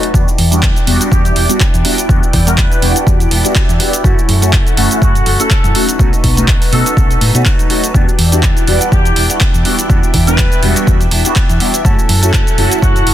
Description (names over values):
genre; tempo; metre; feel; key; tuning
filtered disco house; 123 BPM; 4/4; swing 55% on 16ths; E dorian; A4 = 440 Hz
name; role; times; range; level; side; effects
phased string machine; sustained chords; 0.0-13.1 s; D#4 to A5; -21 LUFS; left 1 dB; ensemble chorus, phaser, sidechain pumping, low-pass filter
electric guitar with an envelope filter; riff; 0.0-13.1 s; E3 to A4; -23 LUFS; left 1 dB; vintage 12-bit sampler grit, sidechain pumping, low-pass filter
punchy analog drum machine; drums; 0.0-13.1 s; handclaps, hi-hat, shaker; -17 LUFS; right 1 dB; overdrive, sidechain pumping on hats, sidechain pumping on perc
mellow synth brass; accompaniment; 0.1-12.9 s; G3 to F#4; -18 LUFS; equal; chorus, phaser, sidechain pumping, low-pass filter
hollow-body short-scale fingered electric bass; bass; 0.1-13.1 s; E1 to B2; -14 LUFS; equal; sidechain pumping, low-pass filter
electronic kick drum; drums; 0.1-12.9 s; none; -13 LUFS; equal; overdrive
clear horn section; melody; 1.1-13.1 s; F#4 to B4; -20 LUFS; left 1 dB; sidechain pumping, low-pass filter, digital delay
room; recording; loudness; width
little or no reverb; dense, heavily limited modern master; -9 LUFS; side -12 dB against mid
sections
0.0-13.1 A section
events
filter sweep 0.0-13.1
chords
0.1 Em7; 4.0 F#m7; 5.8 B7; 7.9 Em7; 11.8 F#m7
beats
| 0.14 0.63 1.12 1.60 | 2.09 2.58 3.07 3.56 | 4.04 4.53 5.02 5.51 | 5.99 6.48 6.97 7.46 | 7.95 8.43 8.92 9.41 | 9.90 10.38 10.87 11.36 | 11.85 12.34 12.82